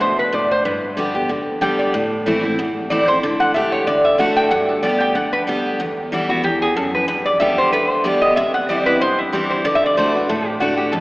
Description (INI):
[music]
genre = bluegrass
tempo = 187 BPM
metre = 4/4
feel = swing 55% on 8ths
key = G major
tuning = A4 = 440 Hz
[part]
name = lap resonator guitar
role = melody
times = 0.0-11.0 s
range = E4 to G5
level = -18 LUFS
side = equal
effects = none
[part]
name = picked steel-string acoustic guitar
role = accompaniment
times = 0.0-11.0 s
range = E2 to G4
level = -19 LUFS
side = equal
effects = none
[sound]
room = wet cathedral reverb, RT60 4.5 s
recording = recorded in a church or concert hall, AM radio sound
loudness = -15 LUFS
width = side -22 dB against mid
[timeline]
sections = 0.0-5.8 A section; 5.8-11.0 B section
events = none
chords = 0.0 D5; 0.7 G; 1.9 Am; 3.2 Dsus4; 3.9 D; 4.5 G; 5.8 Em; 7.1 G; 8.4 C; 9.7 D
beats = 0.01 0.33 | 0.65 0.97 1.30 1.62 | 1.94 2.26 2.58 2.91 | 3.23 3.55 3.87 4.19 | 4.51 4.83 5.16 5.48 | 5.80 6.12 6.44 6.76 | 7.08 7.41 7.73 8.05 | 8.37 8.69 9.01 9.33 | 9.65 9.97 10.29 10.61 | 10.93